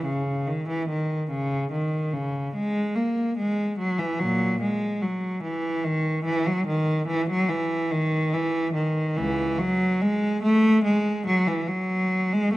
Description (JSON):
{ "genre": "classical, baroque-style suite movement for unaccompanied cello", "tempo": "72 BPM", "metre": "4/4", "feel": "rubato", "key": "unclear", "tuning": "A4 = 440 Hz", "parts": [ { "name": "rich cello", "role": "solo", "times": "0.0-12.6 s", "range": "C#2 to A#3", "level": "-22 LUFS", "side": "equal", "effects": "none" } ], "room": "moderate recital hall reverb, RT60 1.7 s", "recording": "dark, warm production", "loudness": "-22 LUFS", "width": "side -17 dB against mid", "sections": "0.0-12.6 A section", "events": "none", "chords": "none", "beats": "0.04 0.88 1.72 | 2.55 3.37 4.20 5.02 | 5.85 6.67 7.49 8.32 | 9.16 10.01 10.84 11.68 | 12.53" }